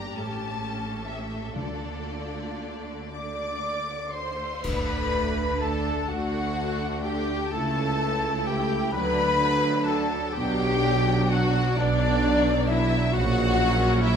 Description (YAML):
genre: classical, slow romantic movement for symphony orchestra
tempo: 36-45 BPM (dotted quarters)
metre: 6/8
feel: rubato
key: D minor, D major from 4.6 s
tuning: A4 = 440 Hz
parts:
  - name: rich chamber violin section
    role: melody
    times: 0.0-14.2 s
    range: D5 to D6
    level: -32 LUFS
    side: left 5 dB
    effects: none
  - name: rich studio violin section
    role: second line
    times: 0.0-14.2 s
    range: D4 to D5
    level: -33 LUFS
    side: left 1 dB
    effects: none
  - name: warm studio viola section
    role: accompaniment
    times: 0.0-14.2 s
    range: F#3 to E4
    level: -33 LUFS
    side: right 1 dB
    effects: none
  - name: rich chamber cello section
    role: bass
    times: 0.0-14.2 s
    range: G2 to D3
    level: -32 LUFS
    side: right 3 dB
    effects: none
  - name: rich studio double bass section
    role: bass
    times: 0.0-14.2 s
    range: G1 to D2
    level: -31 LUFS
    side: right 2 dB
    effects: none
  - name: cymbal swell, clash cymbals and concert bass drum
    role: percussion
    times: 1.6-6.5 s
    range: none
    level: -36 LUFS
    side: equal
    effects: none
  - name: timpani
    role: percussion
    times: 1.6-3.1 s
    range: D3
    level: -38 LUFS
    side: left 1 dB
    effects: none
  - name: mellow clarinet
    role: second line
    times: 3.1-14.2 s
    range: D4 to D5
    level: -33 LUFS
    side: left 2 dB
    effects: none
  - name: mellow hollow concert flute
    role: second line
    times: 3.1-14.2 s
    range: D5 to D6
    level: -33 LUFS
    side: left 4 dB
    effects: none
  - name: mellow trumpet section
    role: stabs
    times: 3.1-14.2 s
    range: D4 to D5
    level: -31 LUFS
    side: right 1 dB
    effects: none
  - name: mellow French horn section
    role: sustained chords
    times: 4.6-14.2 s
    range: F#3 to E4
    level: -33 LUFS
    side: left 2 dB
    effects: none
  - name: mellow tuba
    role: bass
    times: 4.6-14.2 s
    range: A#1 to D2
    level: -32 LUFS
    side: right 3 dB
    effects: none
room: wet recital hall reverb, RT60 1.6 s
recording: minimal, uncompressed stereo recording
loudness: -23 LUFS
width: side -7 dB against mid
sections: 0.0-4.6 A section; 4.6-14.2 B section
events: band accent 4.6-5.6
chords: 0.2 A7; 1.6 Dm; 4.6 D; 7.5 A/C#; 8.9 D; 10.3 Bm; 13.1 F#/A#